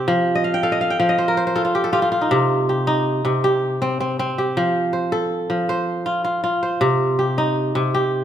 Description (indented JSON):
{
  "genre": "west african traditional",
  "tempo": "107 BPM (dotted quarters)",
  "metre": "12/8",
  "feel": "straight",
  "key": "unclear",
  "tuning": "A4 = 440 Hz",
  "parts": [
    { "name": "kora", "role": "solo", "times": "0.0-8.2 s", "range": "C3 to G5", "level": "-18 LUFS", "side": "equal", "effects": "none" }
  ],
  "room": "moderate recital hall reverb, RT60 1.6 s",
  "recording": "none",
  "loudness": "-18 LUFS",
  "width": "side -10 dB against mid",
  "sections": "0.0-8.2 A section",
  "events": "kora fill 0.4-2.3",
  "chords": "0.1 F; 2.3 Cm; 4.6 F; 6.8 Cm"
}